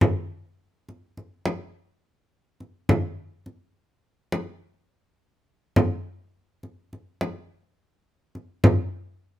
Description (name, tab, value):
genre	contemporary instrumental, contemporary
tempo	104 BPM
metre	5/4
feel	straight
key	none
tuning	none
part	frame drum	percussion	0.0-8.9 s	none	-20 LUFS	equal	none
room	light reverb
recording	minimal, uncompressed stereo recording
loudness	-23 LUFS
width	side -14 dB against mid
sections	0.0-5.8 A section; 5.8-9.4 A section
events	none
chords	none